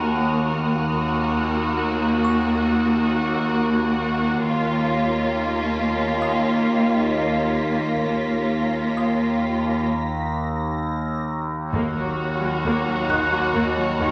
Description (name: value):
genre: cinematic, suspense film score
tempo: 67 BPM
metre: 4/4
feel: uneven beats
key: Eb minor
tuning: A4 = 439 Hz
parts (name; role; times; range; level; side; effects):
- warm symphonic violin section; melody; 0.0-14.1 s; Bb4 to Db5; -35 LUFS; equal; none
- rich studio violin section; second line; 0.0-14.1 s; F4 to Gb4; -29 LUFS; equal; none
- rich symphonic viola section; accompaniment; 0.0-14.1 s; Eb3 to Bb3; -26 LUFS; equal; none
- rich studio double bass section; bass; 0.0-14.1 s; Eb2; -37 LUFS; equal; none
- warm symphonic cello section; bass; 0.0-14.1 s; Eb2; -33 LUFS; equal; none
- overtone-sweeping drone; drone; 0.0-14.1 s; Eb2; -28 LUFS; equal; chorus, built-in reverb, phaser
- impact; sound effects; 0.0-0.9 s; none; barely audible; none; none
- music box; texture; 0.0-14.1 s; Db6 to Gb6; -31 LUFS; equal; none
- rich symphonic violin section; texture; 0.0-14.1 s; Bb5 to Cb7; -38 LUFS; equal; none
- taiko ensemble; drums; 11.7-13.5 s; none; -35 LUFS; equal; none
room: wet scoring stage reverb, RT60 1.9 s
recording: none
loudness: -22 LUFS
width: mono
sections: 0.0-11.7 A section; 11.7-14.1 B section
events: impact 0.0-0.9; break 9.9-11.7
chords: 0.0 Ebm; 11.7 Ebm7